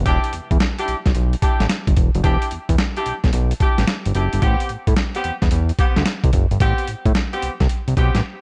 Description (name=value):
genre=R&B, new jack swing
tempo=110 BPM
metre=4/4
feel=swing 66% on 16ths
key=unclear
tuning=A4 = 437 Hz
part: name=fat analog bass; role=bass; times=0.0-8.2 s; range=E1 to A2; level=-22 LUFS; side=equal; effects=none
part: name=warm horn section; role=stabs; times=0.1-8.2 s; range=B3 to G4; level=-27 LUFS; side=equal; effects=none
part: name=boom bap sampler-style drum kit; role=drums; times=0.1-8.2 s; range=hi-hat, kick drum, snare drum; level=-21 LUFS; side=equal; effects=vintage 12-bit sampler grit
room=digital ambience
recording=none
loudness=-19 LUFS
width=mono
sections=0.1-8.4 A section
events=break 8.2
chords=0.1 Em7; 4.4 Am9